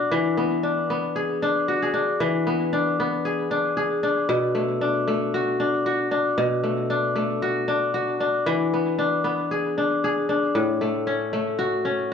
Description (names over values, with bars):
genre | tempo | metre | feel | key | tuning
folktronica | 115 BPM | 4/4 | swing 56% on 16ths | unclear | A4 = 440 Hz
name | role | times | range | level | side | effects
kora | solo | 0.0-12.1 s | A2 to G#4 | -21 LUFS | left 2 dB | tape echo
room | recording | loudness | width
moderate studio reverb, RT60 0.5 s | small room reverb | -21 LUFS | side -6 dB against mid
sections
0.0-12.1 A section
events
none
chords
0.1 E7; 4.3 Bm7; 8.5 E7; 10.6 A6